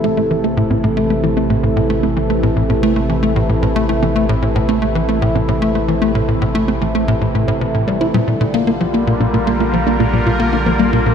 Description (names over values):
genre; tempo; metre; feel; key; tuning
ambient, sequencer-driven space music; 113 BPM; 4/4; straight; A phrygian; A4 = 440 Hz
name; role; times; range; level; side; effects
sweeping resonant pad; sustained chords; 0.0-11.1 s; C3 to Bb4; -18 LUFS; equal; chorus
soft round pluck; arpeggios; 0.0-11.0 s; G3 to C5; -24 LUFS; moving between left 5 dB and right 3 dB; none
tight sequencer bass; riff; 0.0-11.1 s; A2 to E4; -17 LUFS; equal; analog chorus, ping-pong delay
warm sub bass; bass; 0.0-11.1 s; A1 to Bb1; -23 LUFS; equal; tube saturation
room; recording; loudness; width
moderate plate reverb, RT60 3.0 s; echo-heavy mix; -13 LUFS; side -7 dB against mid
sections
0.0-11.1 A section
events
none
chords
0.0 Am; 8.1 Bb6